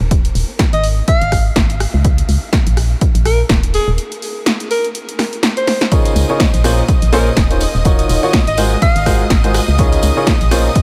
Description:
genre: piano house.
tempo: 124 BPM.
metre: 4/4.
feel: swing 57% on 16ths.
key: Db major.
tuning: A4 = 440 Hz.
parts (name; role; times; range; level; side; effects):
organ-like FM bass; bass; 0.0-10.7 s; Eb1 to Db2; -18 LUFS; equal; sidechain pumping.
electronic kick drum; drums; 0.1-10.8 s; none; -17 LUFS; equal; none.
punchy analog drum machine; drums; 0.1-10.8 s; hi-hat, rim click, snare drum; -22 LUFS; equal; none.
warm alto saxophone; melody; 0.7-9.2 s; Ab4 to F5; -24 LUFS; equal; tape echo.
bright studio violin section; sustained chords; 5.9-10.8 s; Eb5 to Eb6; -26 LUFS; equal; sidechain pumping.
clear baby grand piano; riff; 5.9-10.7 s; Bb2 to Db5; -20 LUFS; equal; sidechain pumping, tape echo.
tambourine; percussion; 5.9-10.8 s; none; -31 LUFS; equal; none.
room: light reverb, studio reverb.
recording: none.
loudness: -14 LUFS.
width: mono.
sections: 0.0-10.8 A section.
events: break 4.0-5.9; drum fill 5.7.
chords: 0.0 Ebsus4; 0.8 Db/Ab (rootless); 2.0 Bbm; 2.8 Eb5; 3.7 N.C.; 5.9 Db69; 6.6 Bbm9; 7.6 Ebm9; 8.6 Ab13; 9.8 Db69.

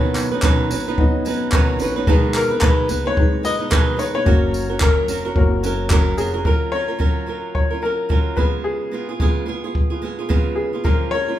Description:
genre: acoustic pop.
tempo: 110 BPM.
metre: 4/4.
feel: swing 60% on 16ths.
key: F# major.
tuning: A4 = 438 Hz.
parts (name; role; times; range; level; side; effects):
clear upright piano; melody; 0.0-11.4 s; G#4 to F#5; -24 LUFS; left 4 dB; none.
felt-muted upright piano; accompaniment; 0.0-6.5 s; G#3 to C#6; -25 LUFS; left 2 dB; none.
flamenco guitar; accompaniment; 0.0-11.4 s; A#2 to B4; -23 LUFS; right 3 dB; none.
upright bass; bass; 0.0-6.4 s; E#1 to C#2; -29 LUFS; equal; none.
jazz brush drum kit; drums; 0.2-11.0 s; handclaps, kick drum, tambourine; -18 LUFS; equal; none.
room: moderate large studio reverb, RT60 0.8 s.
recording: band playing live in one room.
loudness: -16 LUFS.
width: side -12 dB against mid.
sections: 0.0-6.5 A section; 6.5-11.4 B section.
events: felt piano fill 1.3-2.1.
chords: 0.0 Badd9; 2.1 G#m/B; 4.3 F#; 6.5 F#maj7; 8.4 C#7; 10.8 A#m7.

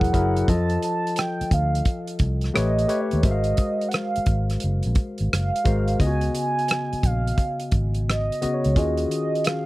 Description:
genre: R&B, neo-soul.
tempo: 87 BPM.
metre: 4/4.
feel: swing 63% on 16ths.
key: unclear.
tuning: A4 = 441 Hz.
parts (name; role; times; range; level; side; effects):
mellow horn-like synth lead; melody; 0.0-9.7 s; C#5 to A5; -27 LUFS; right 3 dB; chorus.
barky tine electric piano; accompaniment; 0.0-9.7 s; Db3 to F5; -26 LUFS; left 2 dB; overdrive.
vintage muted fingered electric bass; bass; 0.0-9.0 s; Fb1 to F2; -23 LUFS; equal; none.
warm soul drum kit; drums; 0.0-9.7 s; hi-hat, kick drum, rim click; -23 LUFS; equal; none.
room: little or no reverb.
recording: dry, close 1970s-style studio recording.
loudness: -20 LUFS.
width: side -18 dB against mid.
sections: 0.0-9.7 A section.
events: none.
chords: 0.5 F7; 2.5 A9; 3.2 Ab13; 6.0 Db9sus4; 8.8 Ebm11.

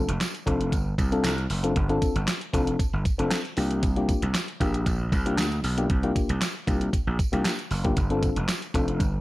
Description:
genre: early-eighties boogie funk.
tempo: 116 BPM.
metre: 4/4.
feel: straight.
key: G minor.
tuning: A4 = 440 Hz.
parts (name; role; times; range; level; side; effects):
mellow FM electric piano; accompaniment; 0.0-9.0 s; Bb3 to A4; -28 LUFS; left 2 dB; chorus.
gritty slap bass; bass; 0.1-9.2 s; F1 to D2; -26 LUFS; equal; overdrive.
crisp 8-bit digital drum machine; drums; 0.1-9.1 s; handclaps, hi-hat, kick drum, snare drum; -27 LUFS; equal; none.
tambourine; percussion; 0.2-9.1 s; none; -42 LUFS; right 7 dB; none.
room: little or no reverb.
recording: none.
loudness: -23 LUFS.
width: side -18 dB against mid.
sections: 0.0-9.2 A section.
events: none.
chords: 0.0 G9sus4; 3.6 C9sus4; 8.0 G9sus4.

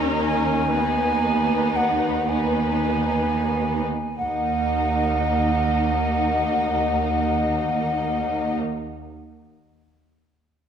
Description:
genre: classical, slow romantic movement for symphony orchestra.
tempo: 29-45 BPM (dotted quarters).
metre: 6/8.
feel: rubato.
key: Eb minor.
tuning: A4 = 436 Hz.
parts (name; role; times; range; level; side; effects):
dark studio violin section; melody; 0.0-8.6 s; Bb4 to Eb5; -30 LUFS; left 5 dB; none.
silver concert flute; second line; 0.0-8.6 s; Gb5 to Bb5; -24 LUFS; equal; none.
warm studio violin section; second line; 0.0-8.6 s; Eb4; -30 LUFS; left 2 dB; none.
rich symphonic viola section; accompaniment; 0.0-8.6 s; Bb3 to Db4; -28 LUFS; right 3 dB; none.
rich symphonic cello section; bass; 0.0-8.6 s; Eb2; -26 LUFS; right 2 dB; none.
dark studio double bass section; bass; 4.2-8.6 s; Eb2; -30 LUFS; right 4 dB; none.
room: moderate concert hall reverb, RT60 1.7 s.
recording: minimal, uncompressed stereo recording.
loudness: -20 LUFS.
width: side -8 dB against mid.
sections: 0.0-4.2 A section; 4.2-7.8 B section.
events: slowing down 0.0-4.2.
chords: 0.0 Eb7(no3); 0.7 Abm/Eb; 4.2 Ebm.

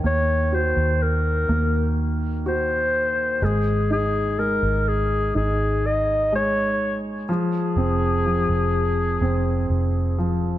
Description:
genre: pop ballad.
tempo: 62 BPM.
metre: 4/4.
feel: straight.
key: unclear.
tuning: A4 = 440 Hz.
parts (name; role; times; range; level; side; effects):
warm grand piano; accompaniment; 0.0-10.6 s; Eb3 to Gb4; -26 LUFS; right 1 dB; none.
vintage muted fingered electric bass; bass; 0.0-10.6 s; F1 to Eb2; -23 LUFS; equal; none.
mellow clarinet; melody; 0.1-10.6 s; Ab4 to Eb5; -23 LUFS; left 2 dB; ping-pong delay.
room: light reverb, small room ambience.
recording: none.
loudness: -19 LUFS.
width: side -13 dB against mid.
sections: 0.0-10.6 A section.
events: none.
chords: 0.0 Ebm; 3.4 Ab5; 7.3 Fm.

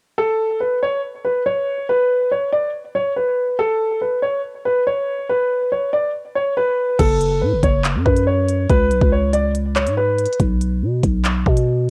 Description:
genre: hip hop, drill.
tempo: 141 BPM.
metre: 4/4.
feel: half-time.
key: F# minor.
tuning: A4 = 441 Hz.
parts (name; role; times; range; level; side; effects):
dark concert grand piano; melody; 0.2-10.4 s; A4 to D5; -20 LUFS; equal; cassette tape.
growling 808-style bass; bass; 7.0-11.9 s; F#1 to B2; -21 LUFS; equal; none.
drill drum kit; drums; 7.0-11.7 s; crash cymbal, handclaps, hi-hat, kick drum; -22 LUFS; equal; cassette tape.
room: little or no reverb.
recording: home recording on cassette.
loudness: -19 LUFS.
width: mono.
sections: 0.2-7.0 A section; 7.0-11.9 B section.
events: none.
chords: 0.2 N.C.; 7.0 F#m; 8.7 C#5; 10.4 B5.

